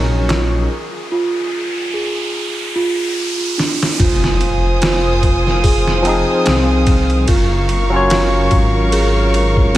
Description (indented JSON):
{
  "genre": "trip hop",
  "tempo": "73 BPM",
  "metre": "4/4",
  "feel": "swing 56% on 16ths",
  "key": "F phrygian",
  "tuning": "A4 = 440 Hz",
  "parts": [
    { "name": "barky tine electric piano", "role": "accompaniment", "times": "0.0-0.7, 6.0-9.8 s", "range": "F3 to Db5", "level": "-19 LUFS", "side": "equal", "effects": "overdrive, tremolo, tape echo" },
    { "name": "warm studio violin section", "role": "sustained chords", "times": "0.0-9.8 s", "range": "Bb4 to Eb6", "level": "-21 LUFS", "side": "equal", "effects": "vintage 12-bit sampler grit" },
    { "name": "celesta", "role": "arpeggios", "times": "0.0-9.8 s", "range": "C4 to Bb4", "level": "-20 LUFS", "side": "right 2 dB", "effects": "tape echo" },
    { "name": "dark detuned saw bass", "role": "bass", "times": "0.0-9.8 s", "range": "F1 to C2", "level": "-17 LUFS", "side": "equal", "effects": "none" },
    { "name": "riser and impact", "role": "sound effects", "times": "0.0-7.3 s", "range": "none", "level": "-23 LUFS", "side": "equal", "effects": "none" },
    { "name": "backwards swelling texture", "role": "texture", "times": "0.0-9.8 s", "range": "Ab4 to Bb4", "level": "-32 LUFS", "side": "left 3 dB", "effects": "none" },
    { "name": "darbuka", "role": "percussion", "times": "0.1-0.7 s", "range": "none", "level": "barely audible", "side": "none", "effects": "none" },
    { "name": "trip hop sampler-style drum kit", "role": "drums", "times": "0.3-9.8 s", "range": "hi-hat, kick drum, ride cymbal, snare drum", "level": "-18 LUFS", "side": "equal", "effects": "none" }
  ],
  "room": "little or no reverb",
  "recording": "none",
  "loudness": "-13 LUFS",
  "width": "side -14 dB against mid",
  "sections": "0.0-4.0 A section; 4.0-9.8 B section",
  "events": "riser 0.0-4.0; filter sweep on tine electric piano 0.0-4.0; break 0.7-4.0; drum fill 3.6-4.0; impact 4.0-7.3",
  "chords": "0.0 Ebm7; 0.7 Ddim; 4.0 Fm7; 7.3 Gbmaj7"
}